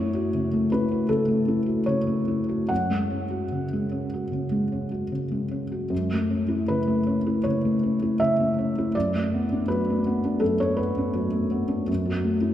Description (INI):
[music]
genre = neoclassical minimalist piano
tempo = 70-82 BPM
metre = 4/4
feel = rubato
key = F# minor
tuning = A4 = 439 Hz
[part]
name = felt-muted upright piano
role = solo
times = 0.0-12.5 s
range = F#2 to F#5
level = -22 LUFS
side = equal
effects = none
[sound]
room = wet church reverb, RT60 3.7 s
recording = recorded in a church or concert hall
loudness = -22 LUFS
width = side -11 dB against mid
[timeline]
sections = 0.0-5.9 A section; 5.9-12.5 B section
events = none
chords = 0.0 F#m7; 2.7 F#sus2; 5.9 F#m7; 8.9 D6/F#; 11.9 F#m7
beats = 0.35 1.10 1.86 | 2.70 3.52 4.32 5.12 | 5.91 6.68 7.44 8.20 | 8.94 9.68 10.41 11.15 | 11.89